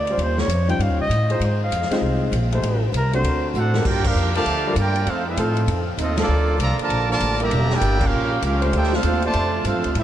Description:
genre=jazz, big band swing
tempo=197 BPM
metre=4/4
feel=swing 63% on 8ths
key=G minor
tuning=A4 = 439 Hz
part: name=breathy trumpet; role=melody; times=0.0-3.5 s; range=Bb4 to G5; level=-26 LUFS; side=equal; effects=ping-pong delay
part: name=upright bass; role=bass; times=0.0-10.0 s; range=E1 to A2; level=-21 LUFS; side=equal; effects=none
part: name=warm trombone section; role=sustained chords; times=0.1-9.5 s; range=F3 to C5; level=-29 LUFS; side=left 1 dB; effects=none
part: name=swinging big-band drum kit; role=drums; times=0.1-10.0 s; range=crash cymbal, hi-hat, kick drum, ride cymbal, snare drum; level=-29 LUFS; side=left 1 dB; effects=vintage 12-bit sampler grit
part: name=warm baby grand piano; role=accompaniment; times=0.7-3.5 s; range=G3 to C5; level=-28 LUFS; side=left 2 dB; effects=none
part: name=clear trumpet section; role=melody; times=3.6-10.0 s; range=Bb3 to Bb5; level=-24 LUFS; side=right 1 dB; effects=ping-pong delay
part: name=clear trombone section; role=second line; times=3.6-10.0 s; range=C3 to A4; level=-26 LUFS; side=right 3 dB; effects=ping-pong delay
room=moderate huge ambient reverb, RT60 3.9 s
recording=dreamy mix soaked in reverb, lossy compression artefacts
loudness=-18 LUFS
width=side -11 dB against mid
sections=0.0-3.8 A section; 3.8-10.0 B section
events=trumpet solo 0.0-3.8; drum fill 3.5-3.8; band accent 4.0, 6.1, 8.0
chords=0.2 Eb13; 1.4 Ab6; 2.6 Am7b5; 3.2 D7; 3.8 Gm7; 5.1 F7; 6.3 Bbmaj7; 7.5 Em7b5; 8.1 Bbm69; 8.7 Dm7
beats=| 0.19 0.49 0.80 1.10 | 1.41 1.71 2.02 2.32 | 2.63 2.93 3.24 3.54 | 3.85 4.15 4.46 4.76 | 5.07 5.38 5.68 5.99 | 6.29 6.60 6.90 7.21 | 7.51 7.82 8.12 8.43 | 8.73 9.04 9.34 9.65 | 9.95

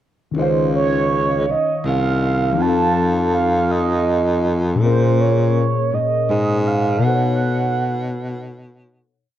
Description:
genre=slow six-eight R&B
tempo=54 BPM (dotted quarters)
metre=6/8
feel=straight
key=Db major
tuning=A4 = 440 Hz
part: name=mellow tine electric piano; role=accompaniment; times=0.3-9.3 s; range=Bb2 to F5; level=-21 LUFS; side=left 5 dB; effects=phaser, cassette tape
part: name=mellow horn-like synth lead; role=melody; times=0.4-8.8 s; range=C5 to A5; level=-20 LUFS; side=right 6 dB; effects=chorus, cassette tape
part: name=breathy baritone saxophone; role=bass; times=0.4-9.2 s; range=C2 to Cb3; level=-19 LUFS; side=equal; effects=none
room=light reverb, small room ambience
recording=home recording on cassette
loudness=-16 LUFS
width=side -11 dB against mid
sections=0.4-9.2 verse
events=fade-out 7.0-9.2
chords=0.4 Dbmaj9; 2.6 F7; 4.8 Bbm7; 7.0 Cb9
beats=| 0.35 1.47 | 2.58 3.69 | 4.80 5.91 | 7.02 8.13

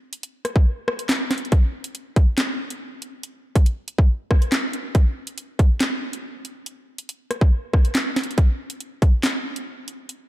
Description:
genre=hip hop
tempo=140 BPM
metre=4/4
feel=half-time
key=none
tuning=none
part: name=drill drum kit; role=drums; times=0.1-10.2 s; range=handclaps, hi-hat, kick drum, rim click, snare drum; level=-19 LUFS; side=equal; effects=overdrive
room=light reverb, digital ambience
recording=dark, warm production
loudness=-19 LUFS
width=side -15 dB against mid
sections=0.0-1.5 A section; 1.5-10.3 A section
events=kick muted 0.7-1.5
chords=none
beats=0.23 0.66 1.09 | 1.52 1.95 2.38 2.81 | 3.23 3.66 4.09 4.52 | 4.95 5.38 5.81 6.24 | 6.66 7.09 7.52 7.95 | 8.38 8.81 9.23 9.66 | 10.09

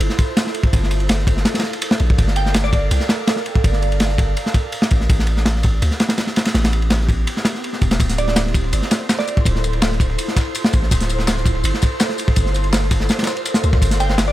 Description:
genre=drum and bass, jungle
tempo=165 BPM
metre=4/4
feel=straight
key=D minor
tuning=A4 = 440 Hz
part: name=long sustained 808-style bass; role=bass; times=0.0-14.3 s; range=D1 to D2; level=-19 LUFS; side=equal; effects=none
part: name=crunchy breakbeat drum kit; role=drums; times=0.0-14.3 s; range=kick drum, ride cymbal, snare drum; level=-18 LUFS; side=equal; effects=none
part: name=glassy wavetable pluck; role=melody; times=2.4-3.1, 8.2-9.6, 14.0-14.3 s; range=D5 to G5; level=-26 LUFS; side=right 2 dB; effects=chorus, cassette tape, dub echo
part: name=dusty soul sampler-style drum kit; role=drums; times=8.0-14.3 s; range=hi-hat, snare drum, tambourine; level=-28 LUFS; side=left 3 dB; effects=high-pass filter on perc, high-pass filter on hats, high-pass filter on snare
part: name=twinkling granular texture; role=texture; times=8.5-14.3 s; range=C5 to C6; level=-30 LUFS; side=right 2 dB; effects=built-in reverb
room=studio ambience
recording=none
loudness=-15 LUFS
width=side -15 dB against mid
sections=0.0-14.3 A section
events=none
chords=0.0 Dm9 (rootless); 0.7 Gm9; 4.4 Am9; 8.0 Dm9; 12.4 Gm9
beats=0.00 0.37 | 0.73 1.09 1.46 1.82 | 2.18 2.55 2.91 3.27 | 3.64 4.00 4.37 4.73 | 5.09 5.46 5.82 6.18 | 6.55 6.91 7.28 7.64 | 8.00 8.37 8.73 9.09 | 9.46 9.82 10.18 10.55 | 10.91 11.28 11.64 12.00 | 12.37 12.73 13.09 13.46 | 13.82 14.18

